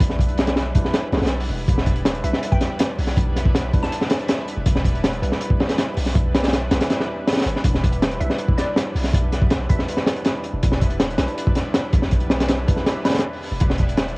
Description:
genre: drum and bass, jungle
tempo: 161 BPM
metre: 4/4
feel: straight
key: E minor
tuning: A4 = 440 Hz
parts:
  - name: lush unison pad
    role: sustained chords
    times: 0.0-14.1 s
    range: G3 to B4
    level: -32 LUFS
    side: equal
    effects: chorus, cassette tape
  - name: bell-like tine electric piano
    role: stabs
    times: 0.0-13.2 s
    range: G3 to B4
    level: -31 LUFS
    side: right 1 dB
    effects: fast stereo tremolo, cassette tape, dub echo
  - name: long sustained 808-style bass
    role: bass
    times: 0.0-14.2 s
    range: E1 to B1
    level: -25 LUFS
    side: equal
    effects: none
  - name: crunchy breakbeat drum kit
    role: drums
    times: 0.0-14.2 s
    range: hi-hat, kick drum, snare drum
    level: -19 LUFS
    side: equal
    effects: cassette tape
  - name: glassy wavetable pluck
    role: melody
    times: 2.2-4.3, 8.2-10.1 s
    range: D5 to A5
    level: -33 LUFS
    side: left 1 dB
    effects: chorus, dub echo
room: light reverb, small room ambience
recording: home recording on cassette, vinyl crackle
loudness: -18 LUFS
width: side -27 dB against mid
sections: 0.0-14.2 A section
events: none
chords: 0.0 Em7

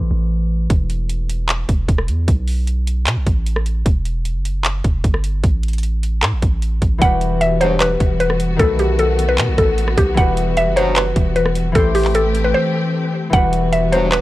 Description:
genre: hip hop, trap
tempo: 152 BPM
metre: 4/4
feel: half-time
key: E harmonic minor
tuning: A4 = 440 Hz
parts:
  - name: concert harp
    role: accompaniment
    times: 0.0-2.4, 7.0-14.2 s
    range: D#3 to C5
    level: -22 LUFS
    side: left 3 dB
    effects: none
  - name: long sustained 808-style bass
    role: bass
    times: 0.0-14.2 s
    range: E1 to B2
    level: -19 LUFS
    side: equal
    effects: none
  - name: trap drum kit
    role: drums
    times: 0.7-14.2 s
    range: handclaps, hi-hat, kick drum, rim click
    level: -18 LUFS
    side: equal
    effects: none
  - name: mallet-like synth pluck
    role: melody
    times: 7.0-14.2 s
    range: G4 to F#5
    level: -18 LUFS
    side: equal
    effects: chorus, tape echo
  - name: warm symphonic string section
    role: sustained chords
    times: 7.0-14.2 s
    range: D#3 to G4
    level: -25 LUFS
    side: left 1 dB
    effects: none
  - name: bright brass ensemble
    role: stabs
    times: 7.6-7.9, 10.8-11.0, 13.9-14.2 s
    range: G2 to F#3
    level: -21 LUFS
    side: left 1 dB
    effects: none
room: studio ambience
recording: dry, gritty hardware recording, cassette tape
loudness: -15 LUFS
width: side -16 dB against mid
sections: 0.0-7.0 A section; 7.0-14.2 B section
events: break 12.5-13.3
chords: 0.0 Am7; 0.7 N.C.; 2.3 Asus2; 3.9 Emadd9; 5.4 N.C.; 7.0 Emadd9; 8.6 B7; 10.2 Emadd9; 11.8 Am7; 13.3 Emadd9

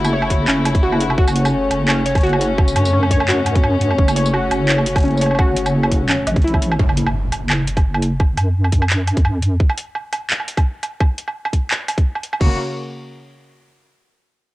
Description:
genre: half-time drum and bass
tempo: 171 BPM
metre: 4/4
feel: swing 54% on 16ths, half-time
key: F# minor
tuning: A4 = 440 Hz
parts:
  - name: rich chamber string section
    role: sustained chords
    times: 0.0-6.8, 12.4-12.6 s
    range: C#3 to F#4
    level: -22 LUFS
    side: left 2 dB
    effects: sidechain pumping, cassette tape
  - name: warbly dusty pluck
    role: arpeggios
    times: 0.0-6.6 s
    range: C#4 to C#5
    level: -22 LUFS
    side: equal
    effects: chorus, cassette tape, tape echo
  - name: deep soft wobble bass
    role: bass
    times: 0.0-9.6, 12.4-12.6 s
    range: F#1 to F#2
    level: -19 LUFS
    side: equal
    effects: chorus
  - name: drum and bass drum kit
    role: drums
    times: 0.0-12.5 s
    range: crash cymbal, handclaps, hi-hat, tambourine, woodblock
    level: -22 LUFS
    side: right 1 dB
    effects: cassette tape
  - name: electronic kick drum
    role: drums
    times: 0.3-12.5 s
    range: none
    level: -15 LUFS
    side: equal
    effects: cassette tape
  - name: impact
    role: sound effects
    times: 6.8-8.2 s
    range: none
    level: -25 LUFS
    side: equal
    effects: none
room: light reverb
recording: home recording on cassette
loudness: -15 LUFS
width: side -18 dB against mid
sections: 0.0-6.8 A section; 6.8-12.4 B section; 12.4-13.8 C section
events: drop 0.0-6.8; impact 6.8-8.2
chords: 0.0 F#m; 6.8 N.C.; 12.4 F#

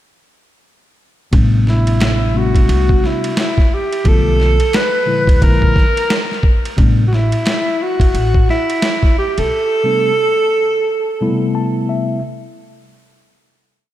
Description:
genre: hip hop, jazz-hop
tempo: 88 BPM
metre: 4/4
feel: swing 61% on 16ths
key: unclear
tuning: A4 = 441 Hz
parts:
  - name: mellow tine electric piano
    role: accompaniment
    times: 1.3-12.2 s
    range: Bb2 to A5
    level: -20 LUFS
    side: left 2 dB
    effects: slow stereo tremolo
  - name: upright bass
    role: bass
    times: 1.3-9.5 s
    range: A1 to D2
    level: -16 LUFS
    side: equal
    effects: none
  - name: boom bap sampler-style drum kit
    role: drums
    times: 1.3-9.5 s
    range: hi-hat, kick drum, ride cymbal, snare drum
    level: -15 LUFS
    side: equal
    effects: none
  - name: breathy alto saxophone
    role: melody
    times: 1.7-11.6 s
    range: E4 to B4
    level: -17 LUFS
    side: right 1 dB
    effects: ping-pong delay
room: moderate lush hall reverb, RT60 1.8 s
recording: dreamy mix soaked in reverb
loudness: -12 LUFS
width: side -13 dB against mid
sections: 1.3-12.2 A section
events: tine electric piano fill 11.2-12.2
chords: 1.3 Am11; 4.1 Bm7b5; 5.4 Bb7#11; 6.8 Am9

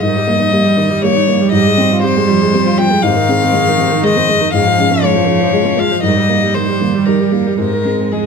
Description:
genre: neoclassical piano and strings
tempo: 119 BPM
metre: 3/4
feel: rubato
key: Ab major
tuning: A4 = 442 Hz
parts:
  - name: warm violin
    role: melody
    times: 0.0-8.3 s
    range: Ab4 to G5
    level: -15 LUFS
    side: left 6 dB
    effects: none
  - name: warm cello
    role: second line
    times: 0.0-8.3 s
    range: Eb3 to Ab3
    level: -16 LUFS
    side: right 6 dB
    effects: none
  - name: dark viola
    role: accompaniment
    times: 0.0-8.3 s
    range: C3 to F4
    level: -19 LUFS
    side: right 4 dB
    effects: none
  - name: felt-muted upright piano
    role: accompaniment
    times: 0.0-8.3 s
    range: Ab2 to F4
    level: -17 LUFS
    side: left 2 dB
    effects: none
room: moderate studio reverb, RT60 0.9 s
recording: band playing live in one room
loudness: -10 LUFS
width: side -5 dB against mid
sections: 0.0-8.3 A section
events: none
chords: 0.0 Eb/Ab; 1.5 Fmadd9/Ab; 3.0 Ab; 4.5 Db/Ab; 6.0 Eb/Ab; 7.6 Ab

